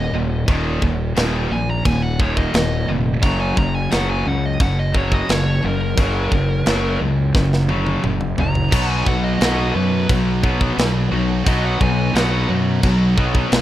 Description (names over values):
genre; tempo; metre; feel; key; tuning
heavy metal; 87 BPM; 4/4; straight; unclear; A4 = 438 Hz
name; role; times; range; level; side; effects
high-gain lead guitar; melody; 0.0-12.5 s; Bb4 to Bb5; -27 LUFS; equal; distortion, ping-pong delay
heavy high-gain guitar; riff; 0.0-13.6 s; Eb2 to B3; -24 LUFS; right 6 dB; distortion
scooped high-gain guitar; riff; 0.0-13.6 s; Eb2 to B3; -23 LUFS; left 6 dB; distortion
fuzz fingered electric bass; bass; 0.0-13.6 s; Eb1 to F#2; -21 LUFS; equal; overdrive
tight metal drum kit; drums; 0.5-13.6 s; crash cymbal, kick drum, snare drum, toms; -21 LUFS; equal; none
heavy high-gain guitar; riff; 8.7-13.6 s; B2 to F#4; -26 LUFS; right 1 dB; distortion
room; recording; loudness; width
studio reverb; rough home demo mix; -16 LUFS; side -13 dB against mid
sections
0.0-13.6 A section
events
lead electric guitar solo 0.0-13.6; drum fill 7.3-8.7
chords
0.0 Eb5; 3.2 Gb; 8.7 B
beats
| 0.48 1.17 1.86 2.54 | 3.23 3.92 4.60 5.29 | 5.98 6.66 7.35 8.04 | 8.72 9.41 10.09 10.78 | 11.46 12.15 12.83 13.52